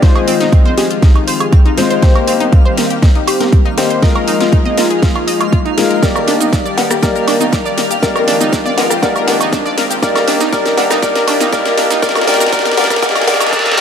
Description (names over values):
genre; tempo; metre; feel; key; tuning
progressive house; 120 BPM; 4/4; straight; unclear; A4 = 439 Hz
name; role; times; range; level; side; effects
warm analog pad; sustained chords; 0.0-13.8 s; Eb3 to D5; -22 LUFS; left 1 dB; chorus, sidechain pumping
analog pluck; arpeggios; 0.0-13.8 s; C4 to Eb5; -19 LUFS; equal; chorus, sidechain pumping, digital delay
dark baby grand piano; stabs; 0.0-13.8 s; Ab3 to D5; -18 LUFS; left 4 dB; sidechain pumping, low-pass filter, digital delay
electronic kick drum; drums; 0.0-13.6 s; none; -11 LUFS; equal; none
house drum kit; drums; 0.0-13.8 s; hi-hat, shaker, snare drum, woodblock; -18 LUFS; right 1 dB; sidechain pumping on perc, high-pass filter on perc, high-pass filter on snare, sidechain pumping on hats, high-pass filter on hats
twinkling granular texture; texture; 0.0-13.8 s; F5; -27 LUFS; equal; built-in reverb, sidechain pumping
electronic congas, rim click and cowbell; percussion; 0.4-13.4 s; none; -20 LUFS; left 1 dB; sidechain pumping on snare, sidechain pumping on perc
plucky unison lead; melody; 0.8-13.8 s; F4 to C5; -19 LUFS; equal; sidechain pumping, ping-pong delay
riser and reverse cymbal; sound effects; 7.7-13.8 s; none; -22 LUFS; right 1 dB; none
room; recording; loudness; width
light reverb; high-pass filter; -10 LUFS; side -8 dB against mid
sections
0.0-13.8 A section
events
build-up 0.0-13.8; drum fill 0.0-13.8; filter sweep on grand piano 0.0-13.8; filter sweep on digital synth lead 0.0-13.8; filter sweep 0.0-13.8; riser 7.7-13.8; reverse cymbal 13.0-13.8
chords
0.0 Ab6; 2.0 Cm7; 4.0 Bb7sus4; 6.0 Ebmaj7; 8.0 Ab6; 10.0 Cm7; 12.0 Bb7sus4